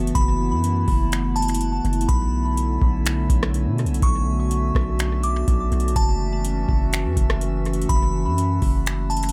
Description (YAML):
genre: hip hop, atmospheric cloud-rap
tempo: 124 BPM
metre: 4/4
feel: half-time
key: B minor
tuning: A4 = 440 Hz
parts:
  - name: warbly tape-like pad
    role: sustained chords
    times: 0.0-9.3 s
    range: D3 to F#4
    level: -29 LUFS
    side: equal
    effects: chorus, built-in reverb, sidechain pumping
  - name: long sustained 808-style bass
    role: bass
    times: 0.0-9.3 s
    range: F#1 to B2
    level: -25 LUFS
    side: equal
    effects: none
  - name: drifting glass-harmonics texture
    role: texture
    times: 0.0-9.3 s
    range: C#4 to A5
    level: -40 LUFS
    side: equal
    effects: chorus, built-in reverb
  - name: glassy synth bell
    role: melody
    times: 0.1-9.3 s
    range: A5 to D6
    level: -31 LUFS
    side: equal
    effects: chorus, tape echo
  - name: booming analog drum machine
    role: drums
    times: 0.1-9.3 s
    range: finger snaps, hi-hat, kick drum, rim click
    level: -24 LUFS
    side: equal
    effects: overdrive
room: little or no reverb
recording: echo-heavy mix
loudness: -21 LUFS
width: mono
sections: 0.0-9.3 A section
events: none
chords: 0.0 F#m7; 2.1 Bm11; 6.0 F#m7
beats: | 0.15 0.64 1.12 1.60 | 2.09 2.57 3.06 3.54 | 4.03 4.51 4.99 5.48 | 5.96 6.44 6.93 7.41 | 7.90 8.38 8.86